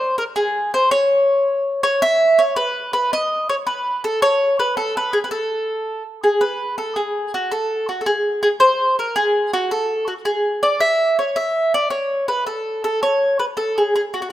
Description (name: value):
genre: italian folk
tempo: 109 BPM (dotted quarters)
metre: 6/8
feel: straight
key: unclear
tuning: A4 = 440 Hz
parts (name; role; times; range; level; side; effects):
- mandolin; solo; 0.0-14.3 s; F#4 to E5; -17 LUFS; equal; none
room: moderate recital hall reverb, RT60 1.7 s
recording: close, detailed microphones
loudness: -17 LUFS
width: side -13 dB against mid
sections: 0.0-6.4 A section; 6.4-14.3 A section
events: none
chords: none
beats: 0.35 | 0.91 1.46 | 2.02 2.57 | 3.12 3.67 | 4.21 4.76 | 5.31 5.86 | 6.41 6.97 | 7.52 8.06 | 8.61 9.16 | 9.71 10.26 | 10.82 11.38 | 11.93 12.48 | 13.03 13.58 | 14.14